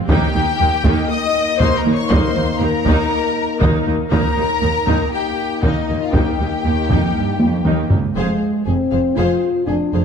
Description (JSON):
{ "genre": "cinematic, epic orchestral film score", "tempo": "119 BPM", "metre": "4/4", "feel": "straight", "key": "unclear", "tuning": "A4 = 443 Hz", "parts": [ { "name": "warm symphonic violin section", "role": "melody", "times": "0.1-10.0 s", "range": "C5 to Eb6", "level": "-24 LUFS", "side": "left 6 dB", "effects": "none" }, { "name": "warm symphonic violin section", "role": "second line", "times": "0.1-10.0 s", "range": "Eb4 to Eb5", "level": "-24 LUFS", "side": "left 3 dB", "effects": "none" }, { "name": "clear symphonic viola section", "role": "accompaniment", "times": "0.1-10.0 s", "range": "Bb3 to Ab4", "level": "-24 LUFS", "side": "right 1 dB", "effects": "none" }, { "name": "mellow French horn section", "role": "sustained chords", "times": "0.1-10.0 s", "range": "Ab3 to F4", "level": "-22 LUFS", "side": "left 4 dB", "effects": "none" }, { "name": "rich symphonic double bass section", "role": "bass", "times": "0.1-10.0 s", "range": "F1 to Eb2", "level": "-23 LUFS", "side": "right 2 dB", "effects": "none" }, { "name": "warm symphonic cello section", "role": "bass", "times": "0.1-10.0 s", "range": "Db2 to G2", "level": "-22 LUFS", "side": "right 3 dB", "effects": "none" }, { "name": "taiko ensemble", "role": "drums", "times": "0.1-9.1 s", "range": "none", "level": "-20 LUFS", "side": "equal", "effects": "none" } ], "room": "moderate scoring stage reverb, RT60 1.9 s", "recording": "dark, warm production", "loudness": "-15 LUFS", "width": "side -7 dB against mid", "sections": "0.0-8.2 A section; 8.2-10.0 B section", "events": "drum fill 7.4-8.2", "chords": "0.1 Eb; 8.2 Fm" }